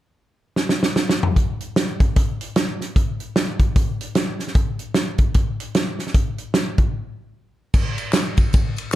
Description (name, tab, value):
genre	gospel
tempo	150 BPM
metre	4/4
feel	swing 60% on 8ths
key	none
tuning	none
part	natural country drum kit	drums	0.6-9.0 s	crash cymbal, hi-hat, kick drum, ride cymbal, snare drum, toms	-18 LUFS	equal	none
part	tambourine and handclaps	percussion	7.7-9.0 s	none	-31 LUFS	left 3 dB	none
room	little or no reverb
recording	dark, warm production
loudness	-18 LUFS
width	side -14 dB against mid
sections	0.0-1.4 A section; 1.4-7.7 B section; 7.7-9.0 C section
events	drum fill 0.6-1.4; break 6.9-7.7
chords	none